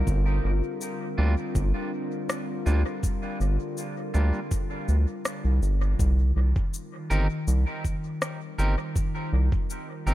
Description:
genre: ambient dub.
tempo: 81 BPM.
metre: 4/4.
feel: straight.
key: C minor.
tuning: A4 = 439 Hz.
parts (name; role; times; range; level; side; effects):
warbly tape-like pad; sustained chords; 0.0-10.1 s; D3 to Bb4; -33 LUFS; left 1 dB; chorus, built-in reverb.
round analog bass; bass; 0.0-10.1 s; G1 to D2; -22 LUFS; equal; none.
electronic cabasa and rim click; drums; 0.1-10.1 s; none; -36 LUFS; left 1 dB; dub echo.
electronic kick drum; drums; 0.1-9.7 s; none; -28 LUFS; equal; none.
clean electric guitar; stabs; 1.2-10.1 s; G3 to Bb4; -35 LUFS; right 2 dB; dub echo.
room: little or no reverb.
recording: echo-heavy mix.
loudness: -24 LUFS.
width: side -15 dB against mid.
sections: 0.0-6.0 A section; 6.0-10.1 B section.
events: none.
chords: 0.1 Gm7; 6.0 Cm7.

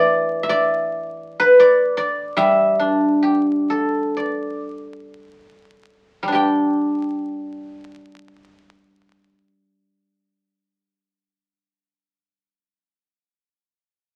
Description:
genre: chinese traditional, Chinese solo plucked strings.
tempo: 52-83 BPM.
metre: 4/4.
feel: rubato.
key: G gong mode.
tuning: A4 = 439 Hz.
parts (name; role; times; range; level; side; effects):
guzheng; solo; 0.0-12.3 s; E3 to G5; -19 LUFS; equal; none.
room: light reverb.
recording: very old 78 rpm record, vinyl crackle.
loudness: -18 LUFS.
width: mono.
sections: 0.0-6.3 A section; 6.3-10.8 B section.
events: slowing down 0.0-6.3.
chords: none.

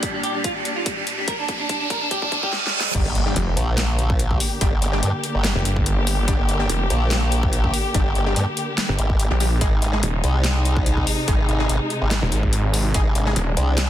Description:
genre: heavy wobble dubstep.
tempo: 144 BPM.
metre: 4/4.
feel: swing 53% on 16ths, half-time.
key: G phrygian.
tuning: A4 = 440 Hz.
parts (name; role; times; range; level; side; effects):
electric guitar through a small old amp; melody; 0.0-2.5 s; G3 to Bb4; -26 LUFS; equal; lush chorus, ping-pong delay.
dark studio string section; sustained chords; 0.0-13.9 s; Bb2 to G4; -27 LUFS; left 1 dB; sidechain pumping.
dubstep drum kit; drums; 0.0-13.9 s; crash cymbal, hi-hat, snare drum; -26 LUFS; left 1 dB; none.
electronic kick drum; drums; 0.0-13.0 s; none; -22 LUFS; equal; none.
riser, reverse cymbal and impact; sound effects; 0.0-4.6 s; none; -26 LUFS; right 2 dB; none.
orchestra-hit-like synth stab; stabs; 2.9-13.3 s; G3 to Ab4; -30 LUFS; left 2 dB; built-in reverb, ping-pong delay.
formant-sweep wobble bass; bass; 2.9-13.9 s; G1 to G2; -21 LUFS; equal; chorus, overdrive.
snarling distorted saw bass; bass; 3.4-13.6 s; Eb1 to Bb1; -20 LUFS; equal; distortion, overdrive.
room: digital ambience.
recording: dense, heavily limited modern master, high-pass filter.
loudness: -18 LUFS.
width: side -12 dB against mid.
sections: 0.0-2.9 A section; 2.9-13.9 B section.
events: build-up 0.0-2.9; drum fill 0.0-2.5, 2.5-2.9; riser 0.0-2.5; filter sweep 0.0-2.9; reverse cymbal 2.1-2.9; drop 2.9-13.9; impact 2.9-4.6.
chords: 0.0 Gm; 9.6 Ab.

